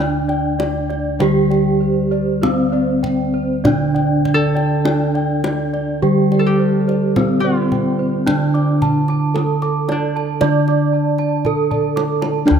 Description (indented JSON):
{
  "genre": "Javanese gamelan",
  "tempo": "49-60 BPM",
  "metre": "4/4",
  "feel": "straight",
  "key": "D slendro",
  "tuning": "A4 = 440 Hz",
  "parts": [
    { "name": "gamelan-type bronze metallophone", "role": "melody", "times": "0.0-12.6 s", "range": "C4-25c to D5", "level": "-20 LUFS", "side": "right 2 dB", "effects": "none" },
    { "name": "concert harp", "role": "second line", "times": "0.0-12.6 s", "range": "A3 to A4", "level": "-26 LUFS", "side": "left 1 dB", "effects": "none" },
    { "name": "gamelan-type bronze metallophone", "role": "accompaniment", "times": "0.0-12.6 s", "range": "D3 to D4", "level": "-20 LUFS", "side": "right 3 dB", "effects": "none" },
    { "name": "gamelan-type bossed gongs", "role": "arpeggios", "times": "0.0-12.6 s", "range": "C5-25c to D6", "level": "-27 LUFS", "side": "left 4 dB", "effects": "none" },
    { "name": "gamelan-type bronze metallophone", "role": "arpeggios", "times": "0.0-12.6 s", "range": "C5-25c to D6", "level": "-27 LUFS", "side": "right 6 dB", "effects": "slapback echo" },
    { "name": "gamelan-type bossed gongs", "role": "bass", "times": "0.0-12.6 s", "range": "D2 to F4-45c", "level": "-22 LUFS", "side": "left 3 dB", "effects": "none" },
    { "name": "kendang", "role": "percussion", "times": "0.3-12.6 s", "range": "none", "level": "-26 LUFS", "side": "left 1 dB", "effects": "none" }
  ],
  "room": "moderate concert hall reverb, RT60 2.2 s",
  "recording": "close, detailed microphones",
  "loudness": "-15 LUFS",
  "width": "side -7 dB against mid",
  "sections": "0.0-12.5 A section",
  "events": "drum fill 11.5-12.5",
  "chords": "none"
}